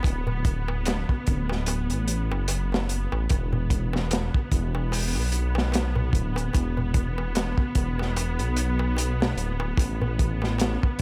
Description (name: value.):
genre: trip hop.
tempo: 74 BPM.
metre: 4/4.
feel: swing 58% on 16ths.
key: unclear.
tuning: A4 = 440 Hz.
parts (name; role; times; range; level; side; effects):
bright symphonic string section; sustained chords; 0.0-11.0 s; B3; -36 LUFS; equal; none.
dark detuned saw bass; bass; 0.0-11.0 s; D1 to B1; -29 LUFS; equal; none.
crunchy breakbeat drum kit; drums; 0.0-11.0 s; hi-hat, kick drum, snare drum; -28 LUFS; equal; none.
darbuka; percussion; 0.0-11.0 s; none; -35 LUFS; equal; none.
room: studio ambience.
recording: none.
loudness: -26 LUFS.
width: mono.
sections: 0.0-11.0 A section.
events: none.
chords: 0.1 D; 3.3 E5; 9.8 A5.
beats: | 0.05 0.86 1.67 2.48 | 3.29 4.11 4.92 5.73 | 6.54 7.35 8.16 8.97 | 9.78 10.59.